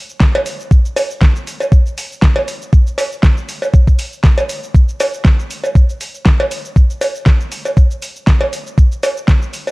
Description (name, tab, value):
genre	nu-disco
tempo	119 BPM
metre	4/4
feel	swing 55% on 16ths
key	none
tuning	none
part	pop drum kit	drums	0.1-9.7 s	hi-hat, shaker, snare drum	-20 LUFS	equal	studio reverb
part	electronic kick drum	drums	0.2-9.4 s	none	-9 LUFS	equal	overdrive, studio reverb
part	cowbell	percussion	0.4-9.7 s	none	-19 LUFS	right 1 dB	none
room	digital ambience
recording	dry, gritty hardware recording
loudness	-11 LUFS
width	side -23 dB against mid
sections	0.0-9.7 A section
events	none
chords	none